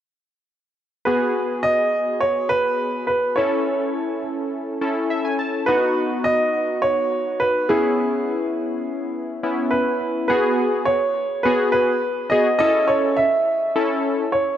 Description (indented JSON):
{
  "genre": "pop",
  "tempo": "104 BPM",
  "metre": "4/4",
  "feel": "straight",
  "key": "G# phrygian",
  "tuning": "A4 = 440 Hz",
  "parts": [
    { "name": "clear baby grand piano", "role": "melody", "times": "1.1-14.6 s", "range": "G#4 to E5", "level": "-20 LUFS", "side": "right 1 dB", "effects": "digital delay" },
    { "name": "warm analog keys", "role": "accompaniment", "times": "1.1-14.2 s", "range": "B3 to A5", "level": "-22 LUFS", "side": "left 2 dB", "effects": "chorus" }
  ],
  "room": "moderate lush hall reverb, RT60 2.9 s",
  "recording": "none",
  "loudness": "-18 LUFS",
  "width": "side -10 dB against mid",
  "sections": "1.1-10.3 A section; 10.3-14.6 B section",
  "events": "synth keys fill 4.8-5.7",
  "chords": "1.1 G#m7; 3.4 A; 5.7 B; 7.7 C#m7; 10.3 G#m7; 12.6 A"
}